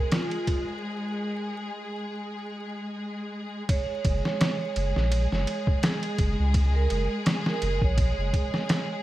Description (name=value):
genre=trip hop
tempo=84 BPM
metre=4/4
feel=swing 56% on 16ths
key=unclear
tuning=A4 = 440 Hz
part: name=vibraphone with medium mallets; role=melody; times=0.0-9.0 s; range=F4 to Db5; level=-33 LUFS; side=right 6 dB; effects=tape echo
part: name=rich studio string section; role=sustained chords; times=0.0-9.0 s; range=Ab3 to Ab4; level=-32 LUFS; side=left 1 dB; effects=vintage 12-bit sampler grit
part: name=trip hop sampler-style drum kit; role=drums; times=0.1-8.9 s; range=kick drum, ride cymbal, snare drum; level=-26 LUFS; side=equal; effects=studio reverb
part: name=warm sub bass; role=bass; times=4.1-8.3 s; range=Gb1 to Db2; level=-25 LUFS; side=equal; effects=none
room=little or no reverb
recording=vinyl crackle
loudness=-25 LUFS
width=side -15 dB against mid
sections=0.0-3.7 A section; 3.7-9.0 B section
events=break 0.8-3.7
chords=0.0 N.C.; 3.7 Gb5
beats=0.12 | 0.83 1.55 2.26 2.98 | 3.69 4.40 5.12 5.83 | 6.55 7.26 7.97 8.69